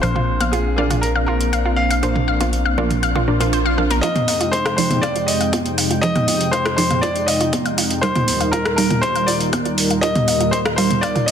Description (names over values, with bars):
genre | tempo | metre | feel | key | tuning
progressive house | 120 BPM | 4/4 | straight | F dorian | A4 = 440 Hz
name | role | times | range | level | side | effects
clear grand piano | melody | 0.0-11.3 s | Ab4 to F5 | -22 LUFS | left 1 dB | digital delay
warm analog pad | sustained chords | 0.0-11.3 s | Eb2 to G5 | -23 LUFS | equal | chorus, sidechain pumping
analog pluck | arpeggios | 0.0-11.2 s | F4 to F5 | -25 LUFS | left 1 dB | chorus, sidechain pumping, digital delay
wide unison pluck | stabs | 0.0-11.3 s | Bb2 to F5 | -24 LUFS | right 2 dB | sidechain pumping, digital delay
round analog bass | bass | 0.0-4.0 s | Bb1 | -22 LUFS | left 1 dB | sidechain pumping
deep house drum kit | drums | 0.0-11.3 s | hi-hat, rim click | -24 LUFS | equal | overdrive, studio reverb
electronic toms, congas and bongos | percussion | 0.2-11.3 s | none | -24 LUFS | right 2 dB | sidechain pumping on toms, studio reverb, sidechain pumping on perc
swell | sound effects | 3.3-4.0 s | none | -31 LUFS | equal | none
electronic kick drum | drums | 4.0-11.1 s | none | -26 LUFS | left 1 dB | overdrive, high-pass filter on kick, studio reverb
room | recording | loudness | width
moderate lush hall reverb, RT60 2.3 s | dense, heavily limited modern master | -16 LUFS | side -8 dB against mid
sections
0.0-4.0 A section; 4.0-11.3 B section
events
filter sweep on analog synth pad 0.0-4.0; swell 3.3-4.0; build-up 4.0-11.3; filter sweep on synth arpeggio sound 4.0-11.3; filter sweep on synth pluck 4.0-11.3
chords
0.0 Bbadd9; 4.0 Fm7; 8.0 Eb